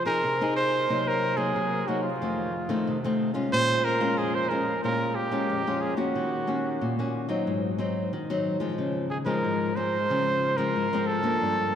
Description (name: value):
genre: samba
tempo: 91 BPM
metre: 4/4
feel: straight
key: unclear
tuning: A4 = 440 Hz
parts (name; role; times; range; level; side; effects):
- warm trumpet; melody; 0.0-11.8 s; F4 to C5; -27 LUFS; right 2 dB; none
- nylon-string guitar; accompaniment; 0.0-11.8 s; F2 to Ab4; -27 LUFS; left 2 dB; none
room: wet cathedral reverb, RT60 5.4 s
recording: in a vast, echoing space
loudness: -24 LUFS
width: side -9 dB against mid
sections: 0.0-11.8 A section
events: none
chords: 0.0 Fm7; 0.9 Cm7b5; 2.2 F7; 3.5 Bbm7; 6.2 Ebm7; 7.5 Ab7; 8.8 Dbmaj7